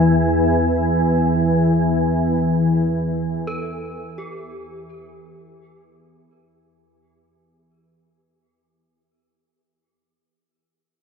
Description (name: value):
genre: dark ambient drone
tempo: free time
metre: none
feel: none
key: E minor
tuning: A4 = 440 Hz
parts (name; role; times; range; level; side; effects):
- organ-like drone; drone; 0.0-6.8 s; E2 to E3; -17 LUFS; equal; ensemble chorus, built-in reverb
- gamelan-type bronze metallophone; arpeggios; 3.5-9.8 s; G4 to A4; -34 LUFS; right 3 dB; none
room: wet huge ambient reverb, RT60 7.7 s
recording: none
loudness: -16 LUFS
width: side -6 dB against mid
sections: 0.0-6.7 A section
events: fade-out 0.0-6.7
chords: 0.0 Emadd11